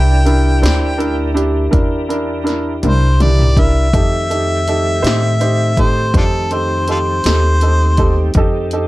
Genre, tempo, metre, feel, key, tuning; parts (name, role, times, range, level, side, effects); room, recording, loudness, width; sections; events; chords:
slow blues; 54 BPM (dotted quarters); 12/8; straight; A4 = 440 Hz
bright harmonica; melody; 0.0-8.3 s; D4 to G5; -19 LUFS; left 1 dB; overdrive
clear upright piano; accompaniment; 0.0-8.9 s; D4 to C5; -20 LUFS; right 2 dB
tonewheel organ; sustained chords; 0.0-8.9 s; Eb3 to Bb4; -24 LUFS; equal; slow rotary speaker, chorus vibrato
upright bass; bass; 0.0-8.9 s; C2 to A2; -15 LUFS; equal
punchy analog drum machine; drums; 0.3-8.9 s; hi-hat, kick drum, snare drum, toms; -17 LUFS; equal
light reverb; dark, warm production; -12 LUFS; side -18 dB against mid
0.0-8.9 A section
drum fill 2.8-3.9
0.0 C7; 3.9 F7